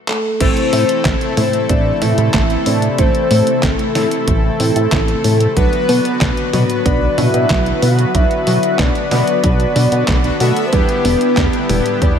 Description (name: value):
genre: synthwave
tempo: 93 BPM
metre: 4/4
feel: straight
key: A dorian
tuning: A4 = 440 Hz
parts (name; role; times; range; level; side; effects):
- soft octave-layered synth lead; melody; 0.1-12.2 s; A4 to F#5; -18 LUFS; left 2 dB; chorus, phaser, cassette tape, tape echo, slapback echo
- detuned 8-bit digital drum machine; drums; 0.1-12.1 s; crash cymbal, handclaps, hi-hat, snare drum, toms; -21 LUFS; equal; overdrive
- warm analog pad; sustained chords; 0.4-12.2 s; C3 to B4; -21 LUFS; right 1 dB; chorus, sidechain pumping
- soft round pluck; arpeggios; 0.4-12.2 s; F#3 to F#4; -23 LUFS; right 2 dB; chorus, tape echo, slapback echo
- analog synth brass; stabs; 0.4-12.2 s; A3 to E5; -22 LUFS; left 3 dB; chorus, slapback echo
- chorused synth bass; bass; 0.4-12.2 s; E1 to B2; -17 LUFS; equal; none
- electronic kick drum; drums; 0.4-12.1 s; none; -18 LUFS; equal; none
room: moderate lush hall reverb, RT60 2.1 s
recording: big arena sound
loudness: -12 LUFS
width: side -8 dB against mid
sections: 0.4-12.2 A section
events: break 0.0-0.4; drum fill 0.1-0.4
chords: 0.4 Am; 5.6 Bm; 10.7 Em7